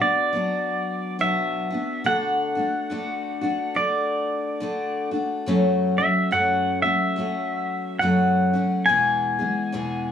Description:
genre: acoustic folk duo or small band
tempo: 70 BPM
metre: 4/4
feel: swing 60% on 8ths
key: unclear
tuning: A4 = 440 Hz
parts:
  - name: pedal steel guitar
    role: second line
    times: 0.0-10.1 s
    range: D5 to G#5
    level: -23 LUFS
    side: equal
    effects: none
  - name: picked steel-string acoustic guitar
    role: accompaniment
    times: 0.0-10.1 s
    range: E2 to G#4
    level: -24 LUFS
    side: left 1 dB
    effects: none
room: moderate studio reverb, RT60 0.7 s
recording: small room ambience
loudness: -21 LUFS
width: side -8 dB against mid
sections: 0.0-10.1 A section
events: pedal steel guitar solo 0.0-10.1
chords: 0.0 Bm; 2.1 D; 5.5 F#m; 8.9 E

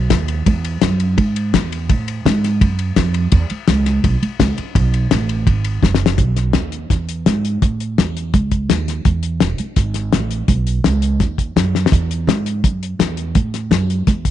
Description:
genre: rockabilly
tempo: 168 BPM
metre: 4/4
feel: straight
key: E major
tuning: A4 = 440 Hz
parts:
  - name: upright bass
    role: bass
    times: 0.0-14.3 s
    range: E1 to A2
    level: -17 LUFS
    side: right 2 dB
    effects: none
  - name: cloth-damped thuddy drum kit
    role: drums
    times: 0.1-14.3 s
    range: hi-hat, kick drum, ride cymbal, snare drum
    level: -17 LUFS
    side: left 3 dB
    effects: none
room: little or no reverb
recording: 1960s-style stereo, nothing above 10.4 kHz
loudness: -15 LUFS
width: side -11 dB against mid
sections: 0.0-6.2 A section; 6.2-14.3 B section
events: drum fill 5.8-6.2, 11.7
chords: none

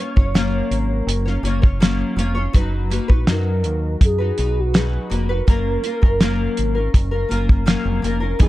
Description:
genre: indie pop, bedroom pop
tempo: 82 BPM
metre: 4/4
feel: straight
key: F# major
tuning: A4 = 439 Hz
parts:
  - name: warm velvety synth lead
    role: melody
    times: 0.0-7.6 s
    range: F#4 to C#5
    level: -27 LUFS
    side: right 1 dB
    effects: lush chorus, tape echo
  - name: nylon-string guitar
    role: accompaniment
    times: 0.0-8.5 s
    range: E3 to C#5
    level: -23 LUFS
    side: left 3 dB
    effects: analog chorus, vibrato effect
  - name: deep dub fingered electric bass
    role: bass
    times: 0.2-8.5 s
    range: E1 to F#2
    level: -21 LUFS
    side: equal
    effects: none
  - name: damped 70s drum kit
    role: drums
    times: 0.2-8.5 s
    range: hi-hat, kick drum, snare drum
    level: -16 LUFS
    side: equal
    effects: vintage 12-bit sampler grit
  - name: mellow reed electric piano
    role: accompaniment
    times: 8.4-8.5 s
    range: E3 to G#4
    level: -20 LUFS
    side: right 5 dB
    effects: fast tremolo, cassette tape
room: small room ambience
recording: none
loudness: -16 LUFS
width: side -16 dB against mid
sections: 0.0-8.4 A section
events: none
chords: 0.0 F#maj7; 2.5 Bmaj7/F#; 5.5 F#maj7

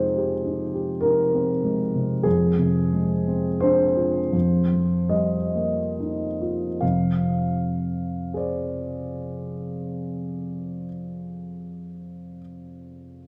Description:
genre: classical, impressionist solo piano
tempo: 32-52 BPM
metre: 3/4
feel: rubato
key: F dorian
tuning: A4 = 441 Hz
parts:
  - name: warm grand piano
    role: solo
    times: 0.0-13.3 s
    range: F2 to F5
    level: -25 LUFS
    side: equal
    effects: none
room: moderate scoring stage reverb, RT60 2.0 s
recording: none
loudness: -24 LUFS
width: mono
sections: 0.0-6.8 A section; 6.8-11.4 B section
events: slowing down 0.0-6.8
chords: 0.0 Fm9; 2.2 Fm6; 4.3 Ebadd9/F; 6.8 Fm6

